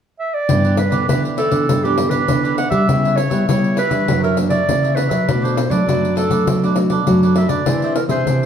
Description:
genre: samba and choro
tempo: 100 BPM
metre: 4/4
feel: straight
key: G major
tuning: A4 = 438 Hz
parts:
  - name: clear clarinet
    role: melody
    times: 0.2-8.5 s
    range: G4 to F#5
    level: -20 LUFS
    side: right 2 dB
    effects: plate reverb
  - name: cavaquinho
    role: accompaniment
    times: 0.5-8.5 s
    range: D4 to E5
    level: -25 LUFS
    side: right 2 dB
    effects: none
  - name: nylon-string guitar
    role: accompaniment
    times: 0.5-8.5 s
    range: F#2 to G#4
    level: -22 LUFS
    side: left 2 dB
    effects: none
  - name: nylon-string guitar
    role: bass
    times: 0.5-8.5 s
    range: G2 to G3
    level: -19 LUFS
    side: right 1 dB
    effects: none
  - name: pandeiro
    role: percussion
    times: 0.5-8.5 s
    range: none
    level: -21 LUFS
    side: left 3 dB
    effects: none
room: wet studio reverb, RT60 0.9 s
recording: heard from further back in the room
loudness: -14 LUFS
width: side -8 dB against mid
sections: 0.5-8.5 A section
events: none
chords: 0.5 G6; 2.9 C#m7b5; 4.1 F#7b13; 5.3 Bm7; 7.7 Eaug7

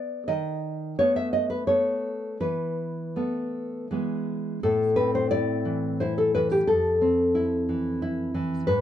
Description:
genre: romantic piece for solo classical guitar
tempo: 78-92 BPM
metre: 3/4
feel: rubato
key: A minor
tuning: A4 = 439 Hz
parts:
  - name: nylon-string guitar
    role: solo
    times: 0.0-8.8 s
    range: F2 to E5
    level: -23 LUFS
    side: left 1 dB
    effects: none
room: light reverb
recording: close, detailed microphones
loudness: -23 LUFS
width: side -10 dB against mid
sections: 0.0-4.6 A section; 4.6-8.8 B section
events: none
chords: 0.3 B7/D#; 2.4 Esus4; 3.9 E; 4.6 Am; 6.7 Fmaj7

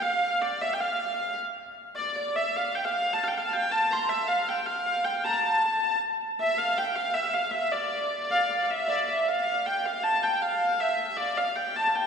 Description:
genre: medieval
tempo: 156 BPM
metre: 3/4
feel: straight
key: unclear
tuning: A4 = 441 Hz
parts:
  - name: rich hurdy-gurdy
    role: solo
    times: 0.0-12.1 s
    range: D5 to C6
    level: -24 LUFS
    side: equal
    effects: none
room: wet church reverb, RT60 2.9 s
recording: heard from further back in the room, small room ambience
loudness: -24 LUFS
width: side -6 dB against mid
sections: 0.0-8.9 A section; 8.9-12.1 B section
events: none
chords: none

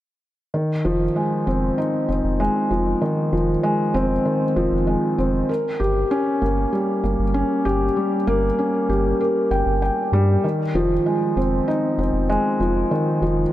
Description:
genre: piano and strings electronica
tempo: 97 BPM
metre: 4/4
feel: straight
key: F minor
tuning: A4 = 440 Hz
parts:
  - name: felt-muted upright piano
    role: riff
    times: 0.5-13.5 s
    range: Eb3 to G5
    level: -19 LUFS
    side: equal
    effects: tape echo
  - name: round analog bass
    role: bass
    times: 0.8-13.5 s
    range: F1 to G2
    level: -23 LUFS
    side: equal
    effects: none
room: light reverb, studio reverb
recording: none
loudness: -18 LUFS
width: side -14 dB against mid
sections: 0.5-13.5 A section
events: none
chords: 0.5 Fm7; 5.5 Gdim; 10.4 Fm7

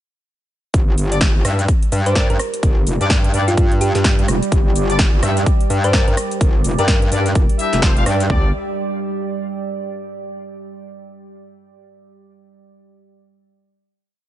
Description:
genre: bass house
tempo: 127 BPM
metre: 4/4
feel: swing 60% on 16ths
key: unclear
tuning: A4 = 439 Hz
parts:
  - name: deep dark ambient pad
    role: sustained chords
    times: 1.6-8.5 s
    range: G3 to D5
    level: -26 LUFS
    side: right 3 dB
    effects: chorus, built-in reverb, sidechain pumping
  - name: metallic wobble bass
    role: bass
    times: 0.7-8.5 s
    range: F1 to G2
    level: -19 LUFS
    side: equal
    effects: chorus, tube saturation, sidechain pumping
  - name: big-room dance drum kit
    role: drums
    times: 0.7-8.4 s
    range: kick drum, toms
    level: -16 LUFS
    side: equal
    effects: small room ambience
  - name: big-room dance drum kit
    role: drums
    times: 0.7-8.3 s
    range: hi-hat, rim click, shaker, snare drum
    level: -22 LUFS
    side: equal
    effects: small room ambience
  - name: warm horn section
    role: stabs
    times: 1.1-8.5 s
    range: G3 to F5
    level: -25 LUFS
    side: left 3 dB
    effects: sidechain pumping, dub echo
  - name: thumb-piano-like synth pluck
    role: melody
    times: 2.1-7.1 s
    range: F4 to C5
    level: -25 LUFS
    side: equal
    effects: chorus, dub echo
room: little or no reverb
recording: nothing above 10.5 kHz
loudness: -14 LUFS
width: side -13 dB against mid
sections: 0.7-8.3 drop; 8.3-10.2 final chord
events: drop 0.7-8.3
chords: 0.7 G5

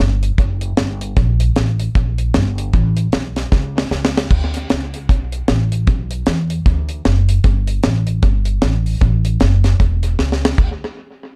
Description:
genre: ska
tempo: 153 BPM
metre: 4/4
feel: swing 60% on 8ths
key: D major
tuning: A4 = 440 Hz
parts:
  - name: upright bass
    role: bass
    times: 0.0-10.8 s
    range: E1 to E2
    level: -19 LUFS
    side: equal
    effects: none
  - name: deep reggae drum kit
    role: drums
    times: 0.0-10.7 s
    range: crash cymbal, hi-hat, kick drum, snare drum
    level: -19 LUFS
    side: equal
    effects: tape echo
room: light reverb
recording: dark, warm production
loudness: -17 LUFS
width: mono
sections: 0.0-4.3 A section; 4.3-10.6 B section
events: drum fill 3.5-4.3, 10.2-10.6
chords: none

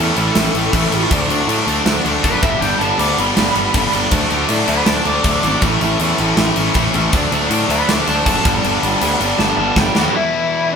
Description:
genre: punk rock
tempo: 159 BPM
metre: 4/4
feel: straight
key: unclear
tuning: A4 = 438 Hz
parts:
  - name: lead guitar through a small cranked amp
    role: melody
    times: 0.0-10.8 s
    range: D4 to D6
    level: -20 LUFS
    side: left 1 dB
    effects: overdrive
  - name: distorted electric guitar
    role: riff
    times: 0.0-10.8 s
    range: E2 to D4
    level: -20 LUFS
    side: left 8 dB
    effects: overdrive
  - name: overdriven electric guitar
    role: riff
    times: 0.0-10.1 s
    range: G2 to E4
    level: -19 LUFS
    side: right 5 dB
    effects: none
  - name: fuzz picked electric bass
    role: bass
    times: 0.0-10.1 s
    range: F#1 to A2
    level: -21 LUFS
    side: equal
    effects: overdrive
  - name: tight metal drum kit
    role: drums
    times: 0.2-10.0 s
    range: crash cymbal, kick drum, snare drum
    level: -18 LUFS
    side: equal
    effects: none
room: light reverb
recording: band playing live in one room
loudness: -13 LUFS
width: side -6 dB against mid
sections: 0.0-10.1 A section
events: half time 0.0-10.1; lead electric guitar solo 0.0-10.1; drum fill 9.4-10.1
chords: 0.0 A; 1.1 D; 2.4 G; 4.1 D; 5.6 A; 7.1 D; 8.5 G; 10.1 E5

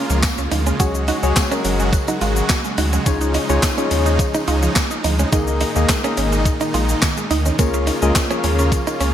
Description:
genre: dance-pop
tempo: 106 BPM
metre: 4/4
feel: straight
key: Db major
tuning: A4 = 440 Hz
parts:
  - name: soft electric-piano-like synth keys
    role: accompaniment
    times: 0.0-9.1 s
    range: Ab3 to Eb5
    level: -23 LUFS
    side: left 4 dB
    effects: chorus, sidechain pumping
  - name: supersaw chords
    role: sustained chords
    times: 0.0-9.1 s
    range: Bb2 to Gb4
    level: -24 LUFS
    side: right 1 dB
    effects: sidechain pumping
  - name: mallet-like synth pluck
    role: arpeggios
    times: 0.0-9.1 s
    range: Eb3 to Gb4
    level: -27 LUFS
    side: right 4 dB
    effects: chorus, sidechain pumping, ping-pong delay
  - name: direct-recorded clean electric guitar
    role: riff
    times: 0.0-9.1 s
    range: Bb3 to Gb4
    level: -26 LUFS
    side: right 5 dB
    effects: lush chorus
  - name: warm sub bass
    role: bass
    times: 0.1-9.1 s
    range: Gb1 to Eb2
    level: -20 LUFS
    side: equal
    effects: sidechain pumping
  - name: gated 80s digital drum machine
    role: drums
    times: 0.1-9.1 s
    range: handclaps, hi-hat, kick drum, shaker, snare drum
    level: -20 LUFS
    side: equal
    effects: gated reverb, gated reverb snare
  - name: tambourine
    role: percussion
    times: 0.1-9.1 s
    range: none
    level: -36 LUFS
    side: left 8 dB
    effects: none
room: light reverb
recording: bright 1980s-style digital production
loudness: -16 LUFS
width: side -10 dB against mid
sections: 0.0-9.1 A section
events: none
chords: 0.0 Bbm7/Db; 0.8 Gbsus2; 3.1 Dbadd9; 5.3 Ebsus4; 7.6 Bbm7/Db

